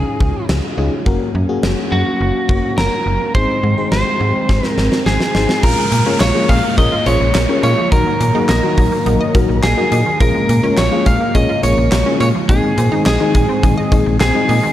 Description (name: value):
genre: synth-pop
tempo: 105 BPM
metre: 4/4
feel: straight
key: Bb minor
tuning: A4 = 440 Hz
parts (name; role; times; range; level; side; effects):
- lightly driven lead guitar; melody; 0.0-14.7 s; Gb4 to F5; -19 LUFS; right 1 dB; shimmer reverb
- chorused pulse-width pad; sustained chords; 0.0-14.7 s; Db3 to F4; -22 LUFS; left 1 dB; shimmer reverb
- slap-like FM bass; bass; 0.0-14.6 s; Gb1 to Bb2; -17 LUFS; equal; none
- huge arena drum kit; drums; 0.2-14.6 s; crash cymbal, handclaps, hi-hat, kick drum, snare drum; -18 LUFS; equal; none
- FM electric piano; accompaniment; 0.8-14.6 s; Eb3 to Db5; -22 LUFS; left 4 dB; chorus, shimmer reverb
- resonant blip pluck; arpeggios; 5.6-14.7 s; Eb3 to Eb5; -22 LUFS; right 2 dB; chorus, shimmer reverb
- downlifter; sound effects; 5.6-10.2 s; none; -28 LUFS; right 1 dB; none
room: light reverb, studio ambience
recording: none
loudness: -12 LUFS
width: side -12 dB against mid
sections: 0.0-5.6 A section; 5.6-14.7 B section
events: drum fill 4.5-5.6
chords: 0.0 Dbadd9; 1.1 Gb; 3.3 Ab; 5.6 Bbm7; 7.9 Ebm/Bb; 10.2 Bbm7; 12.5 Ab/Bb